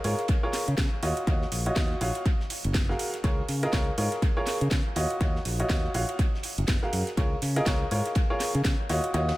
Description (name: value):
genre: piano house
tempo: 122 BPM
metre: 4/4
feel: swing 58% on 16ths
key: Db major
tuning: A4 = 442 Hz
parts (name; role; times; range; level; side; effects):
- clear upright piano; riff; 0.0-9.3 s; F4 to F5; -30 LUFS; equal; sidechain pumping, dub echo
- fingered electric bass; bass; 0.0-9.3 s; Gb1 to Db3; -29 LUFS; equal; sidechain pumping
- house drum kit; drums; 0.0-9.3 s; hi-hat, snare drum; -34 LUFS; equal; studio reverb, dub echo
- warm soul drum kit; drums; 0.0-9.4 s; ride cymbal, snare drum; -43 LUFS; right 3 dB; high-pass filter on cymbals, studio reverb, high-pass filter on snare, high-pass filter on room, dub echo
- electronic kick drum; drums; 0.3-8.8 s; none; -26 LUFS; equal; studio reverb
room: moderate spring reverb, RT60 1.9 s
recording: echo-heavy mix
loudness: -24 LUFS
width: side -17 dB against mid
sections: 0.0-9.4 A section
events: kick drops out 9.1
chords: 0.0 Db6; 1.0 Ebm9; 2.3 Gbmaj9; 3.2 Db6; 5.0 Ebm9; 6.2 Gbmaj9; 7.2 Db6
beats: 0.29 0.78 | 1.27 1.76 2.26 2.75 | 3.24 3.73 4.22 4.71 | 5.21 5.70 6.19 6.68 | 7.17 7.67 8.16 8.65 | 9.14